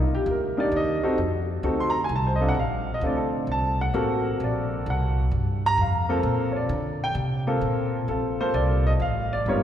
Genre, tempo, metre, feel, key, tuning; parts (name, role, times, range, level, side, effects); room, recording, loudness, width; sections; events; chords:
jazz; 130 BPM; 3/4; swing 68% on 8ths; A4 = 440 Hz
warm upright piano; melody; 0.0-9.6 s; G3 to C6; -24 LUFS; equal
upright bass; bass; 0.0-9.6 s; G1 to D3; -26 LUFS; equal
wet church reverb, RT60 3.3 s; recorded in a church or concert hall; -22 LUFS; side -10 dB against mid
0.0-8.1 A section; 8.1-9.6 B section
upright piano solo 0.0-8.1
0.0 Cm9 (rootless); 1.2 F7b9; 2.6 Bbmaj9; 3.9 D7b13; 5.3 Gm11; 8.1 Bbmaj9